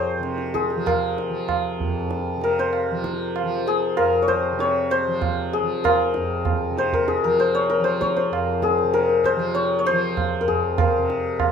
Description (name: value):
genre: indian classical, Hindustani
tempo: 97 BPM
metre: 4/4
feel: straight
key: F raga bhairavi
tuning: A4 = 440 Hz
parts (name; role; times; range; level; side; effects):
- santur; melody; 0.0-11.5 s; Ab4 to Db5; -21 LUFS; left 3 dB; none
- tanpura; drone; 0.0-11.5 s; F2 to F3; -27 LUFS; right 2 dB; none
- tabla; percussion; 0.2-11.5 s; none; -25 LUFS; right 7 dB; none
room: moderate small room reverb, RT60 0.5 s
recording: minimal, uncompressed stereo recording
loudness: -19 LUFS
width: side -7 dB against mid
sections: 0.0-11.5 A section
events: none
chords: none